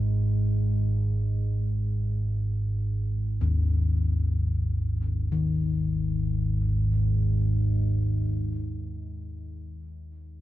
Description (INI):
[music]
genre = dark ambient drone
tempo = free time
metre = none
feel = none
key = unclear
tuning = A4 = 441 Hz
[part]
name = deep rumbling drone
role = drone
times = 0.0-9.6 s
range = G#1 to G#2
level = -26 LUFS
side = right 1 dB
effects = built-in reverb
[part]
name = gamelan-type bossed gongs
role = arpeggios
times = 3.4-9.8 s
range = D#2 to D#3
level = -28 LUFS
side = left 2 dB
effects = diffuse ambient delay
[sound]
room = light reverb, studio ambience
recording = none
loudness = -24 LUFS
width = side -15 dB against mid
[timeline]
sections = 0.0-5.3 A section; 5.3-9.6 B section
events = none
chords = 0.0 G#5